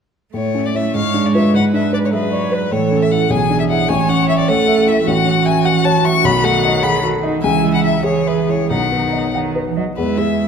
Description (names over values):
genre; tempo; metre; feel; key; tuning
quick classical-period movement for piano quartet; 101 BPM (dotted quarters); 6/8; rubato; A major; A4 = 439 Hz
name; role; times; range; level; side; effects
rich cello; second line; 0.3-10.5 s; D#3 to A3; -18 LUFS; right 7 dB; none
warm baby grand piano; accompaniment; 0.3-10.5 s; A1 to F#5; -19 LUFS; left 2 dB; none
rich violin; melody; 0.4-10.5 s; B4 to C#6; -19 LUFS; left 8 dB; none
rich viola; accompaniment; 1.0-10.5 s; D#4 to C#5; -21 LUFS; right 2 dB; none
room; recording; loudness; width
wet recital hall reverb, RT60 1.7 s; none; -13 LUFS; side -6 dB against mid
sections
0.3-10.0 A section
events
none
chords
0.3 A; 0.9 G#dim7; 1.5 E7/G#; 2.7 A; 3.3 E7/B; 3.9 A; 5.1 F#m7/A; 6.2 B7; 7.4 C#m; 8.7 B; 10.0 E